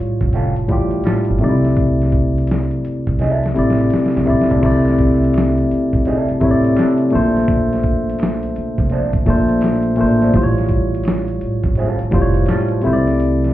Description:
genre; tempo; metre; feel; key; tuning
R&B, neo-soul; 84 BPM; 4/4; swing 64% on 16ths; C mixolydian; A4 = 440 Hz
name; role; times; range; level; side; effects
barky tine electric piano; accompaniment; 0.0-13.5 s; A2 to D5; -16 LUFS; left 1 dB; medium stereo tremolo, plate reverb
upright bass; bass; 0.0-13.5 s; F1 to C2; -20 LUFS; right 1 dB; none
dusty soul sampler-style drum kit; drums; 0.2-13.5 s; crash cymbal, hi-hat, kick drum, snare drum, toms; -20 LUFS; right 1 dB; none
vintage hollow-body jazz guitar; second line; 0.3-12.7 s; F3 to A4; -24 LUFS; right 4 dB; wah, plate reverb
egg shaker and finger snaps; percussion; 4.6-13.5 s; none; -41 LUFS; right 8 dB; none
room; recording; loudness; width
moderate studio ambience, RT60 0.5 s; heard muffled through a wall, club reverb, EQ; -14 LUFS; side -14 dB against mid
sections
0.0-4.6 A section; 4.6-13.5 B section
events
drum fill 3.2-4.6; kick muted 13.2-13.5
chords
0.0 A7b13; 1.4 C69; 7.1 Bbmaj9; 10.3 A7b13; 12.8 C69

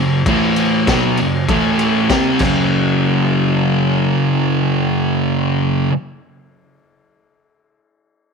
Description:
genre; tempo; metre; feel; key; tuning
garage rock duo or trio; 98 BPM; 4/4; straight; unclear; A4 = 441 Hz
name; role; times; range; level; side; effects
fuzz guitar; riff; 0.0-5.9 s; F#2 to C4; -14 LUFS; equal; distortion
raw garage drum kit; drums; 0.3-2.6 s; crash cymbal, kick drum, ride cymbal, snare drum; -21 LUFS; left 3 dB; none
room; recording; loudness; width
small room ambience; 1960s-style stereo; -13 LUFS; side -5 dB against mid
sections
0.0-2.7 A section; 2.7-5.2 B section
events
drum fill 2.4-2.7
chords
0.3 A5; 0.9 F#5; 1.5 A5; 2.1 C5; 2.4 F#5

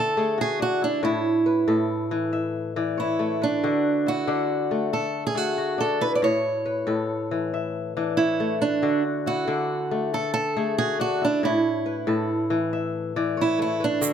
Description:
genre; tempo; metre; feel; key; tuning
west african traditional, West African string and xylophone music; 92 BPM (dotted quarters); 12/8; straight; D lydian; A4 = 440 Hz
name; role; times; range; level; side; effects
fingerpicked old ladder-braced acoustic guitar; melody; 0.0-14.1 s; D4 to D5; -24 LUFS; right 4 dB; none
kora; arpeggios; 0.0-14.1 s; A2 to E5; -26 LUFS; left 5 dB; none
egg shaker; percussion; 14.0-14.1 s; none; -26 LUFS; right 12 dB; none
room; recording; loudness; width
little or no reverb; close, detailed microphones; -22 LUFS; side -8 dB against mid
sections
0.0-8.8 A section; 8.8-14.1 A section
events
none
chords
0.0 D; 1.0 A; 3.6 D; 6.2 A; 8.8 D; 11.4 A

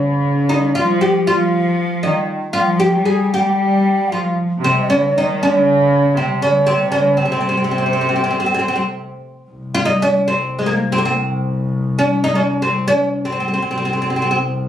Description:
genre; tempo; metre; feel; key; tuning
Arabic maqam ensemble; 117 BPM; 4/4; straight; C maqam bayati; A4 = 437 Hz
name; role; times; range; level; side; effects
oud; melody; 0.0-14.4 s; Ab3 to Ab4; -16 LUFS; equal; none
warm chamber cello section; second line; 0.0-9.0 s; C3 to G3; -18 LUFS; equal; none
breathy ney; second line; 1.3-9.0 s; C5 to Ab5; -23 LUFS; equal; none
rich double bass; drone; 9.5-14.7 s; C2; -23 LUFS; left 2 dB; none
room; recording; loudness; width
wet studio reverb, RT60 0.6 s; recorded on a phone in the room, studio ambience, compression; -14 LUFS; side -10 dB against mid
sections
0.0-9.5 A section; 9.5-14.7 B section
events
none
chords
none

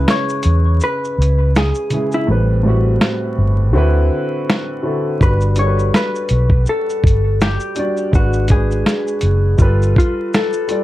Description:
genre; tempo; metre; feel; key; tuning
lo-fi hip hop; 82 BPM; 4/4; swing 55% on 16ths; unclear; A4 = 440 Hz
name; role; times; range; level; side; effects
vintage hollow-body jazz guitar; melody; 0.0-10.8 s; E4 to C#5; -21 LUFS; left 2 dB; low-pass filter, tape echo, plate reverb
warm upright piano; accompaniment; 0.0-10.8 s; A2 to D5; -21 LUFS; equal; low-pass filter, plate reverb
vintage muted fingered electric bass; bass; 0.0-9.9 s; F#1 to E2; -14 LUFS; equal; none
dusty soul sampler-style drum kit; drums; 0.1-10.8 s; finger snaps, hi-hat, kick drum, shaker, snare drum; -15 LUFS; equal; vintage 12-bit sampler grit
room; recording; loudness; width
light reverb; vinyl crackle; -13 LUFS; side -15 dB against mid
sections
0.0-10.8 A section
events
break 0.0-5.2; hi-hats muted 2.3-5.2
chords
0.0 C#m7; 2.3 Am9; 3.7 D13; 5.2 Gmaj7; 8.1 G#m7b5; 9.6 G9

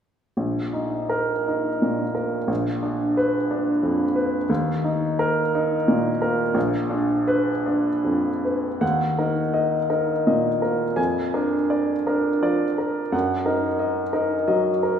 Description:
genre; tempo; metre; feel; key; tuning
classical, romantic character piece for solo piano; 49-62 BPM (dotted quarters); 6/8; rubato; Eb minor; A4 = 442 Hz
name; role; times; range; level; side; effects
clear upright piano; solo; 0.4-15.0 s; Bb1 to Ab5; -20 LUFS; equal; none
room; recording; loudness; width
wet concert hall reverb, RT60 2.1 s; heard from further back in the room; -20 LUFS; side -8 dB against mid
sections
0.4-8.8 A section; 8.8-15.0 B section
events
none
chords
0.4 Eb5/Bb; 2.5 Bb; 4.5 Eb5; 6.6 Bb; 8.8 Ebm; 11.0 Bb7/F; 13.1 Ebm/Gb

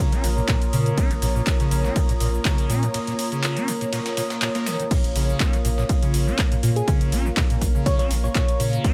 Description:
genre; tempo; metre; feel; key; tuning
acid house; 122 BPM; 4/4; swing 53% on 16ths; Bb minor pentatonic; A4 = 439 Hz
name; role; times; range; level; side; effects
dark analog pad; sustained chords; 0.0-8.9 s; Bb3 to Bb5; -33 LUFS; equal; chorus, sidechain pumping
liquid acid bass; riff; 0.0-8.9 s; Bb2 to Db4; -29 LUFS; equal; phaser, overdrive, lush chorus, dub echo
punchy analog drum machine; drums; 0.0-8.9 s; crash cymbal, handclaps, hi-hat, ride cymbal, shaker; -32 LUFS; equal; none
warbly tape-like pad; texture; 0.0-8.9 s; F4 to Eb6; -34 LUFS; equal; chorus, built-in reverb, phaser, sidechain pumping
round analog bass; bass; 0.2-8.8 s; Bb1 to Bb2; -26 LUFS; equal; sidechain pumping
dusty soul sampler-style drum kit; drums; 0.2-8.9 s; hi-hat, ride cymbal, snare drum; -40 LUFS; equal; none
electronic kick drum; drums; 0.5-8.9 s; none; -24 LUFS; equal; none
soft struck synth lead; melody; 6.8-8.6 s; Ab4 to Db5; -32 LUFS; equal; chorus, dub echo
room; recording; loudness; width
light reverb; none; -22 LUFS; mono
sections
0.0-8.9 A section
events
break 2.9-4.9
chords
0.0 Bbm

